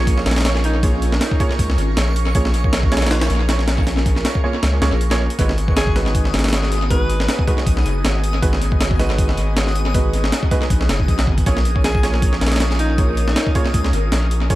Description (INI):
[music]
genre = drum and bass, jungle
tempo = 158 BPM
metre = 4/4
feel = swing 55% on 16ths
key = unclear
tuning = A4 = 441 Hz
[part]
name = airy breathy pad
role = sustained chords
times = 0.0-14.6 s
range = B3 to A#4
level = -28 LUFS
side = left 1 dB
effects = chorus, phaser
[part]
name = dark grand piano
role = stabs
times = 0.0-14.6 s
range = G#3 to C#5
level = -26 LUFS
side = right 3 dB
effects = tape echo
[part]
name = soft dub sub bass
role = bass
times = 0.0-14.6 s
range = F#1 to C#2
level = -19 LUFS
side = equal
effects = none
[part]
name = backwards swelling texture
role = texture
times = 0.0-14.6 s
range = C#6 to D#6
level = -31 LUFS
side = left 1 dB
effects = built-in reverb
[part]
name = breakbeat sampler-style drum kit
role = drums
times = 0.1-14.6 s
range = hi-hat, kick drum, snare drum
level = -18 LUFS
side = equal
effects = tape echo
[part]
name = warm alto saxophone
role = melody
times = 0.6-1.4, 5.8-7.4, 11.8-13.6 s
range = D#4 to B4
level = -28 LUFS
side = equal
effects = vintage 12-bit sampler grit, tape echo
[sound]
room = little or no reverb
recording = echo-heavy mix, vinyl crackle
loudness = -15 LUFS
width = side -16 dB against mid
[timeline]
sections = 0.0-14.6 A section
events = kick drops out 4.6-5.4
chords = 0.0 A#m7; 5.4 G#m7; 11.5 A#m7